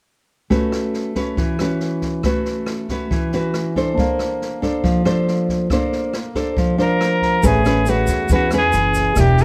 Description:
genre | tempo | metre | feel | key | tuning
bossa nova | 139 BPM | 4/4 | straight | unclear | A4 = 444 Hz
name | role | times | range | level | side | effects
nylon-string guitar | accompaniment | 0.5-9.4 s | E3 to C5 | -21 LUFS | equal | none
open jazz drum kit | drums | 0.5-9.4 s | kick drum, rim click, snare drum | -27 LUFS | equal | none
barky tine electric piano | accompaniment | 3.9-9.4 s | Bb3 to Bb5 | -31 LUFS | equal | overdrive
warm trumpet | melody | 6.8-9.4 s | F#4 to Bb4 | -21 LUFS | equal | none
upright bass | bass | 7.4-9.4 s | E1 to E2 | -21 LUFS | equal | none
egg shaker | percussion | 7.4-9.4 s | none | -37 LUFS | equal | none
room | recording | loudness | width
light reverb | none | -19 LUFS | mono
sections
0.5-7.4 A section; 7.4-9.4 B section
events
tine electric piano fill 6.6-7.4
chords
0.5 A69; 4.0 Bbmaj9; 7.4 Amaj9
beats
| 0.51 0.95 1.38 1.81 | 2.25 2.68 3.11 3.54 | 3.98 4.41 4.84 5.27 | 5.71 6.14 6.57 7.00 | 7.43 7.87 8.30 8.73 | 9.16

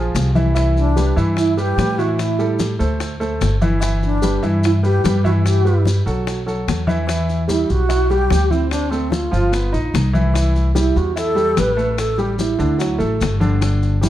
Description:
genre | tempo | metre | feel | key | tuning
Afro-Cuban jazz | 147 BPM | 4/4 | straight | G major | A4 = 440 Hz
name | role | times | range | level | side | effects
warm baby grand piano | accompaniment | 0.0-14.1 s | D3 to E5 | -22 LUFS | right 1 dB | none
upright bass | bass | 0.0-14.1 s | G1 to A2 | -18 LUFS | equal | none
bongos | percussion | 0.2-14.1 s | none | -28 LUFS | left 6 dB | none
congas | percussion | 0.2-14.1 s | none | -26 LUFS | left 2 dB | none
maracas | percussion | 0.2-14.1 s | none | -33 LUFS | left 3 dB | none
wooden-headed alto flute | melody | 0.8-14.1 s | C4 to B4 | -20 LUFS | right 2 dB | none
room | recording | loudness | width
light reverb | dark, warm production | -15 LUFS | side -13 dB against mid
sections
0.0-7.1 A section; 7.1-14.1 B section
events
none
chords
0.0 Bbsus2; 0.6 Cmaj7; 2.2 Am7; 3.0 Dsus2; 3.8 G6; 6.3 B5; 7.1 Em9; 8.7 Dm7; 9.5 G7alt; 10.3 Cmaj7; 12.0 A5; 12.8 Dadd9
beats
0.15 | 0.56 0.97 1.38 1.78 | 2.19 2.60 3.01 3.41 | 3.82 4.23 4.64 5.04 | 5.45 5.86 6.27 6.68 | 7.08 7.49 7.90 8.31 | 8.72 9.12 9.53 9.94 | 10.35 10.76 11.16 11.57 | 11.98 12.39 12.80 13.21 | 13.62 14.03

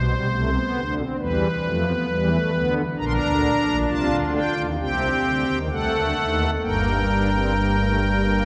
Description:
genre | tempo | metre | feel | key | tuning
classical, baroque-style 4-part fugue for pipe organ | 66 BPM | 4/4 | straight | G minor | A4 = 440 Hz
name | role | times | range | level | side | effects
pipe organ, strings celeste | solo | 0.0-8.4 s | G1 to C6 | -22 LUFS | equal | none
room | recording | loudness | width
wet church reverb, RT60 3.5 s | none | -22 LUFS | mono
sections
0.0-8.4 A section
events
none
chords
0.0 Am11/B; 1.2 Em; 3.0 Gm/Bb; 4.8 Cm; 5.7 D7/C; 6.6 Gm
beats
0.30 1.20 2.09 | 2.99 3.89 4.80 5.71 | 6.63 7.55

